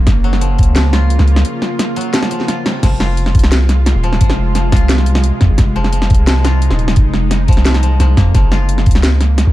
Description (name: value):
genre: half-time drum and bass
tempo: 174 BPM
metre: 4/4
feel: half-time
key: F phrygian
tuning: A4 = 440 Hz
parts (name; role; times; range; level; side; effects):
- bowed-like drone; sustained chords; 0.0-9.5 s; C3 to F4; -22 LUFS; right 1 dB; built-in reverb, vintage 12-bit sampler grit, sidechain pumping
- koto; arpeggios; 0.0-9.5 s; C3 to F4; -24 LUFS; left 4 dB; dub echo
- long sustained 808-style bass; bass; 0.0-9.5 s; Eb1 to F2; -12 LUFS; equal; none
- drum and bass drum kit; drums; 0.1-9.5 s; crash cymbal, hi-hat, snare drum; -18 LUFS; equal; none
- electronic kick drum; drums; 0.1-0.7, 2.8-8.9 s; none; -12 LUFS; equal; none
room: digital ambience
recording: dark, warm production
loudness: -10 LUFS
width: side -16 dB against mid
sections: 0.0-2.8 A section; 2.8-9.5 A section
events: drop 0.0-2.8, 2.8-9.5; break 1.4-2.8; band accent 2.7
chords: 0.0 Gb; 2.8 Fm; 8.3 Gb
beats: | 0.07 0.42 0.76 1.10 | 1.45 1.79 2.14 2.48 | 2.83 3.17 3.52 3.86 | 4.21 4.55 4.90 5.24 | 5.59 5.93 6.28 6.62 | 6.97 7.31 7.66 8.00 | 8.35 8.69 9.04 9.38